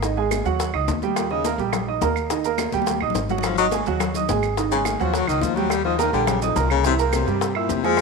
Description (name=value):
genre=Afro-Cuban jazz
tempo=211 BPM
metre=4/4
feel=straight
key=Eb mixolydian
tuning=A4 = 439 Hz
part: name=warm baby grand piano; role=accompaniment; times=0.0-8.0 s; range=Eb3 to E6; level=-23 LUFS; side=right 13 dB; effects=none
part: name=upright bass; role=bass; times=0.0-8.0 s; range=Ab1 to G2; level=-27 LUFS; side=equal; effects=none
part: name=bongos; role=percussion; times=0.0-8.0 s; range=none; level=-30 LUFS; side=left 13 dB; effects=none
part: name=congas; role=percussion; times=0.0-8.0 s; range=none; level=-30 LUFS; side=left 16 dB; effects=none
part: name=maracas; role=percussion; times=0.0-8.0 s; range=none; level=-36 LUFS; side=right 13 dB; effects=none
part: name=claves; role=percussion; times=0.3-8.0 s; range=none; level=-34 LUFS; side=right 15 dB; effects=none
part: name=clear baritone saxophone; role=second line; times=1.2-1.4, 3.5-8.0 s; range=F2 to G3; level=-24 LUFS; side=left 13 dB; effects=none
room=light reverb, small room reverb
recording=1960s-style stereo with parts hard left and right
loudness=-19 LUFS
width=side -4 dB against mid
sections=0.0-8.0 A section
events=baritone saxophone solo 0.0-8.0; drum fill 2.7-3.4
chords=0.0 Ab5; 1.2 Eb; 3.4 Ab5; 5.7 Eb; 6.8 C7